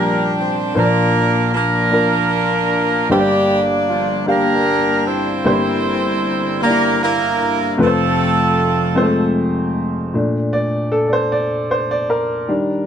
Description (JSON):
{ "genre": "gospel", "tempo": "51 BPM (dotted quarters)", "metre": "6/8", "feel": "straight", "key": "Bb major", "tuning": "A4 = 440 Hz", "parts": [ { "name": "warm horn section", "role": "melody", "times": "0.0-9.4 s", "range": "F3 to C5", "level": "-17 LUFS", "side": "right 1 dB", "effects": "none" }, { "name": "warm concert grand piano", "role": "accompaniment", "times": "0.0-12.9 s", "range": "F1 to F5", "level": "-17 LUFS", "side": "left 1 dB", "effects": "none" } ], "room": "moderate studio reverb, RT60 0.5 s", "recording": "dark, warm production", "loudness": "-14 LUFS", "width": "side -8 dB against mid", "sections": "0.8-10.1 A section; 10.1-12.9 B section", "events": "grand piano solo 10.1-12.9", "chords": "0.0 Bb6; 0.8 Bb; 3.1 Gm; 5.5 C7/G; 7.8 F; 10.1 Bbmaj7", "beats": "| 0.75 1.93 | 3.10 4.28 | 5.45 6.62 | 7.80 8.97 | 10.14 11.32 | 12.49" }